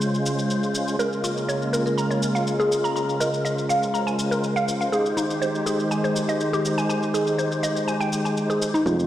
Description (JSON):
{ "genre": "afro house", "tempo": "122 BPM", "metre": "4/4", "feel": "straight", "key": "unclear", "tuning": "A4 = 440 Hz", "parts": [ { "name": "warm analog pad", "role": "sustained chords", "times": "0.0-9.1 s", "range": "Db3 to C5", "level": "-26 LUFS", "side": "equal", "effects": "chorus, sidechain pumping" }, { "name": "tonewheel organ", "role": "stabs", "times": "0.0-9.1 s", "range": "Ab3 to C5", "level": "-26 LUFS", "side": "equal", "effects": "overdrive, chorus vibrato, slow rotary speaker, sidechain pumping, tape echo" }, { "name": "shaker", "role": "drums", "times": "0.0-9.1 s", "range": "none", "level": "-33 LUFS", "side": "left 1 dB", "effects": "none" }, { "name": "mallet-like synth pluck", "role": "arpeggios", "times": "1.0-9.0 s", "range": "Eb4 to Bb5", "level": "-25 LUFS", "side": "equal", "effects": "chorus, sidechain pumping, tape echo" }, { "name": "marimba with medium mallets", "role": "melody", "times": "1.9-4.1 s", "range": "Bb4 to F5", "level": "-28 LUFS", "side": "equal", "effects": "tape echo" }, { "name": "smooth synth bass", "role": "bass", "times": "8.9-9.1 s", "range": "F1", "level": "-21 LUFS", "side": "equal", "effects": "sidechain pumping, high-pass filter" }, { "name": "electronic kick drum", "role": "drums", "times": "8.9-9.0 s", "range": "none", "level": "-28 LUFS", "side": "equal", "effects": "none" } ], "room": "moderate lush hall reverb, RT60 2.2 s", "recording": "played on a big sound system in a bare room, stone room reverb", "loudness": "-21 LUFS", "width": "side -12 dB against mid", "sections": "0.0-8.9 A section", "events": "none", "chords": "0.0 Dbmaj7; 1.0 Bbm7; 4.9 Abmaj7", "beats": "0.01 0.50 | 0.99 1.48 1.98 2.47 | 2.96 3.45 3.94 4.43 | 4.93 5.42 5.91 6.40 | 6.89 7.39 7.88 8.37 | 8.86" }